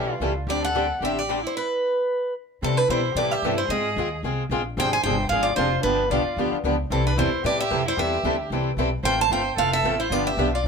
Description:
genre	acoustic string swing (jazz manouche)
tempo	224 BPM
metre	4/4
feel	swing 56% on 8ths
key	C major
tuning	A4 = 441 Hz
part	picked steel-string acoustic guitar	melody	0.0-10.6 s	A4 to A5	-24 LUFS	right 1 dB	none
part	warm violin	second line	0.0-10.6 s	C4 to C5	-29 LUFS	right 4 dB	none
part	picked steel-string acoustic guitar	accompaniment	0.0-10.7 s	C3 to A4	-30 LUFS	right 6 dB	none
part	picked swing-style acoustic guitar	accompaniment	0.0-10.7 s	C3 to A4	-28 LUFS	left 6 dB	none
part	upright bass	bass	0.0-10.7 s	F1 to C3	-28 LUFS	left 1 dB	none
room	moderate small room reverb, RT60 0.5 s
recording	band playing live in one room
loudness	-21 LUFS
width	side -5 dB against mid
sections	0.0-2.6 A section; 2.6-10.7 B section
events	none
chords	0.5 D7sus4; 1.6 N.C.; 2.6 C6; 3.7 Ab6; 4.8 Fm6; 5.8 G7; 6.9 C6; 8.0 Am7; 9.0 Fmaj7; 10.1 G7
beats	0.21 | 0.48 0.75 1.01 1.28 | 1.55 1.82 2.09 2.36 | 2.63 2.89 3.16 3.43 | 3.70 3.97 4.24 4.50 | 4.77 5.04 5.31 5.57 | 5.84 6.11 6.38 6.64 | 6.91 7.18 7.44 7.71 | 7.98 8.24 8.51 8.78 | 9.04 9.31 9.58 9.84 | 10.11 10.38 10.64

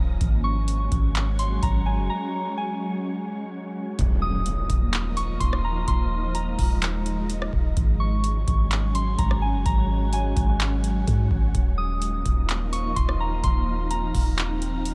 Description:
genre	hip hop, atmospheric cloud-rap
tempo	127 BPM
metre	4/4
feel	half-time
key	Eb dorian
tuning	A4 = 441 Hz
part	ethereal airy pad	sustained chords	0.0-14.9 s	F3 to Eb4	-34 LUFS	equal	ensemble chorus, built-in reverb, sidechain pumping
part	soft 808-style bass	bass	0.0-14.9 s	Eb1 to Ab2	-28 LUFS	equal	none
part	wind-like tuned noise texture	texture	0.0-14.9 s	F4 to Bb5	-42 LUFS	equal	built-in reverb
part	booming analog drum machine	drums	0.2-14.9 s	handclaps, hi-hat, kick drum, rim click	-27 LUFS	equal	none
part	soft synth bell	melody	0.4-14.8 s	Ab5 to Eb6	-33 LUFS	equal	chorus, low-pass filter, digital delay
part	impact	sound effects	4.0-5.9 s	none	-36 LUFS	equal	none
room	digital ambience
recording	none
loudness	-24 LUFS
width	mono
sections	0.0-4.0 A section; 4.0-14.9 B section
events	break 2.1-4.0; impact 4.0-5.9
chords	0.2 Ab7sus4; 4.0 Ebsus2; 7.8 Ab7sus4; 11.5 Ebsus2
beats	| 0.21 0.68 1.15 1.63 | 2.10 2.57 3.04 3.52 | 3.99 4.46 4.93 5.41 | 5.88 6.35 6.82 7.29 | 7.77 8.24 8.71 9.19 | 9.66 10.13 10.60 11.07 | 11.55 12.02 12.49 12.96 | 13.44 13.91 14.38 14.85

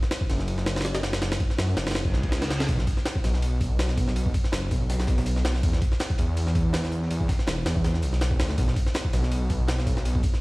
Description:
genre	drum and bass, jungle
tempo	163 BPM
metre	4/4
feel	swing 54% on 16ths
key	B minor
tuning	A4 = 440 Hz
part	jungle sampler-style drum kit	drums	0.0-10.4 s	hi-hat, kick drum, ride cymbal, snare drum	-25 LUFS	equal	small room ambience
part	detuned saw bass	bass	0.3-10.2 s	E1 to F#2	-25 LUFS	equal	none
part	reverse cymbal	sound effects	2.1-2.7 s	none	-40 LUFS	right 1 dB	none
part	crunchy breakbeat drum kit	drums	2.7-10.3 s	hi-hat, snare drum	-40 LUFS	left 1 dB	high-pass filter on hats, small room ambience, high-pass filter on snare, high-pass filter on room
room	small room reverb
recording	played on a big sound system in a bare room, stone room reverb, vinyl crackle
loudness	-23 LUFS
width	side -22 dB against mid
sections	0.0-10.4 A section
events	reverse cymbal 2.1-2.7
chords	none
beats	0.11 0.48 0.85 | 1.22 1.58 1.95 2.32 | 2.69 3.06 3.42 3.79 | 4.16 4.53 4.90 5.27 | 5.63 6.00 6.37 6.74 | 7.11 7.47 7.84 8.21 | 8.58 8.95 9.31 9.68 | 10.05

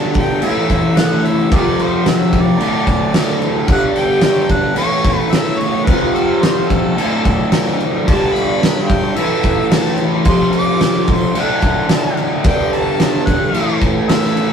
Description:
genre	garage rock duo or trio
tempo	110 BPM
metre	4/4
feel	straight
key	unclear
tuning	A4 = 439 Hz
part	bright harmonica	melody	0.0-14.5 s	A4 to D6	-23 LUFS	left 1 dB	overdrive
part	raw garage guitar	riff	0.0-14.5 s	D2 to A3	-16 LUFS	equal	overdrive, phaser
part	oversized low-tuned drum kit	drums	0.1-14.5 s	crash cymbal, kick drum, snare drum	-16 LUFS	equal	none
room	moderate stone room reverb, RT60 1.0 s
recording	rough rehearsal-room recording, warm saturation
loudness	-12 LUFS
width	side -7 dB against mid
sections	0.0-14.5 A section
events	none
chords	0.4 A5; 1.5 F5; 2.6 D5; 3.7 G5; 4.8 A; 5.9 F5; 7.0 D5; 8.1 G; 9.2 A5; 10.2 F5; 11.3 D; 12.4 G5; 13.5 A5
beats	0.41 0.95 | 1.50 2.05 2.59 3.14 | 3.69 4.23 4.78 5.33 | 5.87 6.42 6.97 7.51 | 8.06 8.61 9.15 9.70 | 10.24 10.79 11.34 11.88 | 12.43 12.98 13.53 14.08

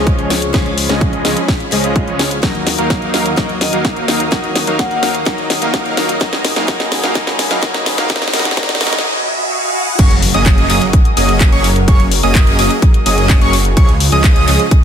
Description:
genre	EDM, festival progressive house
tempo	127 BPM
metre	4/4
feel	straight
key	F# major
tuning	A4 = 441 Hz
part	picked steel-string acoustic guitar	accompaniment	0.0-9.0 s	E#3 to F#4	-22 LUFS	left 3 dB	sidechain pumping, tape echo
part	lush unison pad	sustained chords	0.0-14.8 s	C#3 to D#6	-24 LUFS	equal	chorus, phaser, sidechain pumping
part	supersaw chords	riff	0.0-14.6 s	E#3 to E#5	-18 LUFS	right 1 dB	sidechain pumping, low-pass filter, tape echo
part	detuned saw bass	bass	0.0-14.6 s	F#1 to D#2	-19 LUFS	equal	sidechain pumping
part	electronic kick drum	drums	0.1-14.8 s	none	-12 LUFS	equal	none
part	house drum kit	drums	0.1-14.8 s	crash cymbal, handclaps, hi-hat, snare drum	-18 LUFS	left 1 dB	soft clipping on snare
part	riser, swell and impact	sound effects	5.2-11.9 s	none	-22 LUFS	right 1 dB	none
part	vibraphone with medium mallets	melody	3.6-5.0 s	D#5 to F#5	-22 LUFS	left 2 dB	tape echo
part	wide unison lead	arpeggios	10.0-14.6 s	C#6 to D#6	-19 LUFS	right 2 dB	sidechain pumping, tape echo
room	light reverb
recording	dense, heavily limited modern master, high-pass filter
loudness	-11 LUFS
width	side -8 dB against mid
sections	0.0-10.0 A section; 10.0-14.8 B section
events	build-up 0.0-10.0; drum fill 0.0-9.0; filter sweep on supersaw synth 0.0-10.0; filter sweep 0.0-10.0; riser 5.2-10.0; swell 9.0-10.0; drop 10.0-14.8; impact 10.0-11.9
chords	0.0 C#; 2.4 D#m; 6.2 G#m; 10.0 F#add9; 13.8 C#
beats	0.07 | 0.54 1.01 1.49 1.96 | 2.43 2.90 3.38 3.85 | 4.32 4.79 5.26 5.74 | 6.21 6.68 7.15 7.63 | 8.10 8.57 9.04 9.52 | 9.99 10.46 10.93 11.41 | 11.88 12.35 12.82 13.30 | 13.77 14.24 14.71

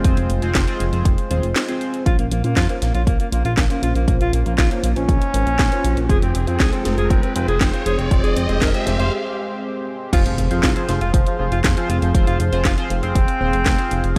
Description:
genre	italo disco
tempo	119 BPM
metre	4/4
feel	straight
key	F minor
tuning	A4 = 440 Hz
part	warm analog pad	sustained chords	0.0-14.2 s	Ab3 to C6	-30 LUFS	equal	chorus
part	chorused polysynth	stabs	0.0-14.1 s	C4 to C5	-30 LUFS	equal	phaser
part	chorused synth bass	bass	0.0-14.2 s	Eb1 to Bb2	-23 LUFS	equal	none
part	electronic kick drum	drums	0.0-14.2 s	none	-21 LUFS	equal	studio reverb
part	house drum kit	drums	0.0-14.1 s	crash cymbal, handclaps, hi-hat, snare drum	-27 LUFS	equal	studio reverb
part	breathy alto saxophone	melody	2.1-14.2 s	F3 to C5	-27 LUFS	equal	tape echo
part	riser and impact	sound effects	4.4-12.1 s	none	-32 LUFS	equal	none
room	light reverb, digital ambience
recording	dry, gritty hardware recording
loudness	-19 LUFS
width	mono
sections	0.0-2.1 A section; 2.1-10.1 B section; 10.1-14.2 C section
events	break 1.6-2.1, 9.1-10.1; filter sweep on analog polysynth 2.1-10.1; filter sweep on analog synth pad 2.1-10.1; riser 4.4-9.1; impact 10.1-12.1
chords	0.0 Fm; 2.1 Bbmadd9; 6.1 Fm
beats	| 0.05 0.55 1.05 1.56 | 2.06 2.57 3.07 3.58 | 4.08 4.58 5.09 5.59 | 6.10 6.60 7.11 7.61 | 8.11 8.62 9.12 9.63 | 10.13 10.63 11.14 11.64 | 12.15 12.65 13.15 13.66 | 14.16

